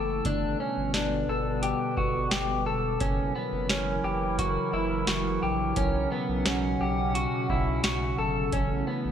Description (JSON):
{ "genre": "dream pop", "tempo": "87 BPM", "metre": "4/4", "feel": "straight", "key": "unclear", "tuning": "A4 = 440 Hz", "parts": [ { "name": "warbly tape-like pad", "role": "sustained chords", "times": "0.0-9.1 s", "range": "B2 to F#5", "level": "-30 LUFS", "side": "right 1 dB", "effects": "chorus, built-in reverb" }, { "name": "electric guitar through a small old amp", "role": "arpeggios", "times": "0.0-9.1 s", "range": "B3 to A4", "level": "-29 LUFS", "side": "left 1 dB", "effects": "wide subtle chorus, digital delay" }, { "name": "saturated sub bass", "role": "bass", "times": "0.0-9.1 s", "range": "E1 to B1", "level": "-33 LUFS", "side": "equal", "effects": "none" }, { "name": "booming analog drum machine", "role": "drums", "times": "0.2-8.7 s", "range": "hi-hat, kick drum, snare drum", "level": "-29 LUFS", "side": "equal", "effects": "none" } ], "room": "moderate lush hall reverb, RT60 2.4 s", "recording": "bright 1980s-style digital production", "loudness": "-25 LUFS", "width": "side -9 dB against mid", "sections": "0.0-9.1 A section", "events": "none", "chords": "0.3 G; 3.0 F#7; 5.8 Bsus2; 8.5 Aadd9" }